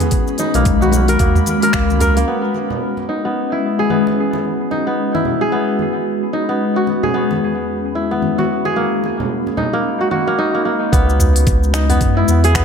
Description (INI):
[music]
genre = organic downtempo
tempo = 111 BPM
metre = 4/4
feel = swing 60% on 16ths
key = C# dorian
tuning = A4 = 442 Hz
[part]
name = ethereal airy pad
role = sustained chords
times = 0.0-12.6 s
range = E2 to B5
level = -20 LUFS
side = left 2 dB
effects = ensemble chorus, built-in reverb, phaser, sidechain pumping
[part]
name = kora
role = arpeggios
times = 0.0-12.6 s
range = A#3 to A#4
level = -18 LUFS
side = equal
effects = low-pass filter, analog delay
[part]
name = afro-pop drum kit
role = drums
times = 0.0-2.3, 10.9-12.6 s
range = finger snaps, hi-hat, shaker, toms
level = -22 LUFS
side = right 1 dB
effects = none
[part]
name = congas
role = percussion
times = 0.0-10.2 s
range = none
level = -27 LUFS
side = right 4 dB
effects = none
[part]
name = electronic kick drum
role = drums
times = 0.1-1.9, 10.9-12.6 s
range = none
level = -17 LUFS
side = equal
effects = none
[part]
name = warm sub bass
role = bass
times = 0.5-2.2, 10.9-12.6 s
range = B1 to F#2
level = -15 LUFS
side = equal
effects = sidechain pumping
[sound]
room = moderate echo chamber reverb, RT60 2.3 s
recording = echo-heavy mix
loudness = -14 LUFS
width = side -7 dB against mid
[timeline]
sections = 0.0-2.3 A section; 2.3-10.9 B section; 10.9-12.6 C section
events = none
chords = 0.1 Bmaj7; 2.3 C#m9; 6.6 Eadd9; 8.8 Bmaj7; 10.9 C#m9